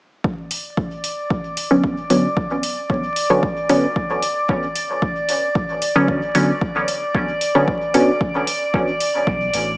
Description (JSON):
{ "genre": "dub techno", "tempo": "113 BPM", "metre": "4/4", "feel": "straight", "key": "B minor", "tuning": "A4 = 440 Hz", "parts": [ { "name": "electronic kick drum", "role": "drums", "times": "0.2-9.4 s", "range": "none", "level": "-23 LUFS", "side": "equal", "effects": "studio reverb" }, { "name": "drifting glass-harmonics texture", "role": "texture", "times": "0.7-9.8 s", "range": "D5", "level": "-22 LUFS", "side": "equal", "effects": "chorus, built-in reverb, sidechain pumping" }, { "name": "electronic hi-hat", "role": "drums", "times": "0.5-9.6 s", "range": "none", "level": "-26 LUFS", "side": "equal", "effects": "studio reverb" }, { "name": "filtered dub chord stab", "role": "stabs", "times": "1.7-8.1 s", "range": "D3 to C#4", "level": "-18 LUFS", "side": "equal", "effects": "chorus, phaser, cassette tape, sidechain pumping, dub echo" }, { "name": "warm sub bass", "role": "bass", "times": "9.3-9.8 s", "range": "A1 to B1", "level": "-28 LUFS", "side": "equal", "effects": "tube saturation, sidechain pumping" } ], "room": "wet spring reverb, RT60 1.4 s, digital ambience", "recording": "echo-heavy mix, vinyl crackle, small speaker sound", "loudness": "-17 LUFS", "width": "side -21 dB against mid", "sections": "0.2-9.8 A section", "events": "none", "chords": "0.2 Bmadd9" }